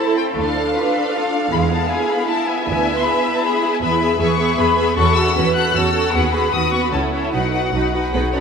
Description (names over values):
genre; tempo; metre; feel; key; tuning
quick classical-period movement for string orchestra; 155 BPM; 3/4; straight; E major from 3.8 s; A4 = 444 Hz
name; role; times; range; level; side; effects
warm symphonic violin section; melody; 0.0-8.1 s; E5 to F#6; -21 LUFS; left 6 dB; none
rich symphonic violin section; second line; 0.0-8.4 s; G#3 to F#5; -22 LUFS; left 2 dB; none
clear symphonic viola section; accompaniment; 0.0-8.4 s; B3 to A4; -22 LUFS; equal; none
rich studio cello section; bass; 0.0-8.4 s; B3 to B4; -24 LUFS; right 6 dB; none
rich symphonic double bass section; bass; 0.4-8.4 s; B1 to E2; -22 LUFS; right 3 dB; none
room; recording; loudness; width
wet cathedral reverb, RT60 5.4 s; in a vast, echoing space; -15 LUFS; side -6 dB against mid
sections
0.0-8.4 A section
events
none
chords
0.4 Dm; 1.5 E; 2.7 E7/D; 3.8 E; 5.0 F#m7/E; 6.1 B/D#; 6.9 A/C#; 7.3 B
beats
| 0.36 0.75 1.14 | 1.52 1.90 2.28 | 2.67 3.05 3.43 | 3.81 4.20 4.58 | 4.97 5.35 5.74 | 6.13 6.53 6.92 | 7.33 7.73 8.13